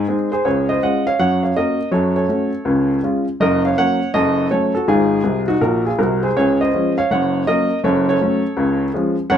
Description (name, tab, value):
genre	jazz, stride piano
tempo	163 BPM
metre	4/4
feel	swing 64% on 8ths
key	Db major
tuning	A4 = 437 Hz
part	clear upright piano	solo	0.0-9.4 s	Gb1 to Ab5	-15 LUFS	equal	none
room	moderate club reverb, RT60 0.6 s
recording	dark, warm production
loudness	-15 LUFS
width	side -9 dB against mid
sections	0.5-9.4 A section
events	upright piano fill 5.3-6.4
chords	0.5 Db; 1.2 Gb; 1.9 Gbm; 2.7 Db; 3.4 Gb; 4.1 Gbm; 4.9 Ab6; 5.6 Ab; 6.4 Db; 7.1 Gb; 7.8 Gbm; 8.6 Db